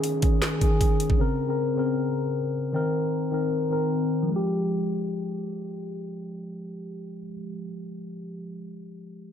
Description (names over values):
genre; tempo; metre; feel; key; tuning
hip hop, trap; 155 BPM; 4/4; half-time; F minor; A4 = 440 Hz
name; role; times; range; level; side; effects
mellow tine electric piano; accompaniment; 0.0-9.3 s; Db3 to Bb4; -26 LUFS; left 2 dB; phaser, low-pass filter
trap drum kit; drums; 0.0-1.2 s; handclaps, hi-hat, kick drum, snare drum; -22 LUFS; right 1 dB; none
downlifter; sound effects; 0.0-1.2 s; none; -44 LUFS; right 2 dB; none
room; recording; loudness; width
little or no reverb; none; -24 LUFS; side -9 dB against mid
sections
0.0-4.3 A section; 4.3-7.4 B section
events
none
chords
0.0 Dbsus2; 1.2 Bbmadd9; 2.7 Cm7; 4.3 Fmadd9